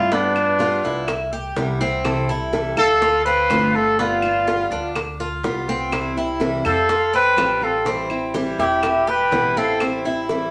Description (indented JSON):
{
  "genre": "latin, Cuban son and guajira",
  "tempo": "124 BPM",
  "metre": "4/4",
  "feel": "straight",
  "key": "C major",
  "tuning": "A4 = 440 Hz",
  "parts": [
    { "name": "warm trumpet", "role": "melody", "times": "0.0-9.8 s", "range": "D4 to B4", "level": "-20 LUFS", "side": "equal", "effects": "none" },
    { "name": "hollow concert flute", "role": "second line", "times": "0.0-9.8 s", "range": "B4 to G5", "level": "-30 LUFS", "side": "equal", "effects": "none" },
    { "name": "picked steel-string acoustic guitar", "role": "accompaniment", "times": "0.0-10.5 s", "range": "B2 to A4", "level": "-27 LUFS", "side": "equal", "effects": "none" },
    { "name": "Cuban tres", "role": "arpeggios", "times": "0.0-10.5 s", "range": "B3 to A4", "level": "-28 LUFS", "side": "equal", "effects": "none" },
    { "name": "upright bass", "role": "bass", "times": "0.0-10.5 s", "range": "E1 to G2", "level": "-34 LUFS", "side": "equal", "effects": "none" },
    { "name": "bongos", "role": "percussion", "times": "0.1-10.5 s", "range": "none", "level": "-31 LUFS", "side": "equal", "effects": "none" },
    { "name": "claves", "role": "percussion", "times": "0.4-10.0 s", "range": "none", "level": "-33 LUFS", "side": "equal", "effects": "none" }
  ],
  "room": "wet studio reverb, RT60 0.7 s",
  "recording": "none",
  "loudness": "-20 LUFS",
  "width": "mono",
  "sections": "0.0-10.5 A section",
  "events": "none",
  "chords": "0.1 G7; 1.1 Cmaj7; 2.1 Am7/C; 3.0 Dm7; 4.0 G7; 5.9 C; 6.9 Fadd9; 7.9 Am7; 8.8 Em; 9.8 Am7"
}